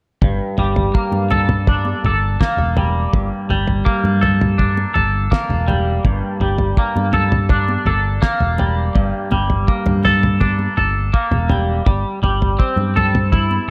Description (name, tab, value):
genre	psychedelic rock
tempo	82 BPM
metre	4/4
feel	straight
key	G dorian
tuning	A4 = 440 Hz
part	twangy electric guitar	riff	0.2-13.7 s	G2 to A4	-22 LUFS	equal	flanger
part	picked electric bass	bass	0.2-13.6 s	E1 to G2	-21 LUFS	equal	none
part	cloth-damped thuddy drum kit	drums	0.2-13.5 s	kick drum, snare drum, toms	-21 LUFS	equal	none
part	congas	percussion	1.1-13.7 s	none	-32 LUFS	equal	none
room	light reverb, small room reverb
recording	none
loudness	-17 LUFS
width	mono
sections	0.2-13.7 A section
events	none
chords	0.2 Gmadd9; 11.9 Am/G